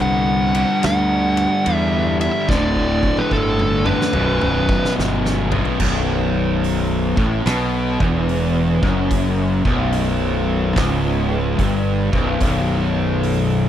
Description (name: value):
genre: stoner and doom metal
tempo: 73 BPM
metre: 4/4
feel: swing 66% on 8ths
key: B minor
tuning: A4 = 440 Hz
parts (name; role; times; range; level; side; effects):
- fuzz lead guitar; melody; 0.0-4.9 s; A4 to F#5; -21 LUFS; right 1 dB; distortion, slapback echo
- distorted electric guitar; riff; 0.0-13.7 s; B1 to G3; -24 LUFS; equal; overdrive
- fuzz guitar; riff; 0.0-13.7 s; B1 to G3; -21 LUFS; left 2 dB; distortion
- fuzz fingered electric bass; bass; 0.0-13.7 s; B0 to E2; -22 LUFS; equal; overdrive
- oversized low-tuned drum kit; drums; 0.5-13.5 s; crash cymbal, hi-hat, kick drum, ride cymbal, snare drum, toms; -24 LUFS; equal; none
room: little or no reverb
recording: dry, close 1970s-style studio recording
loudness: -16 LUFS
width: side -10 dB against mid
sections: 0.0-5.8 A section; 5.8-13.7 B section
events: drum fill 2.5-5.8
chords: 0.0 G5; 2.5 D5; 4.1 B5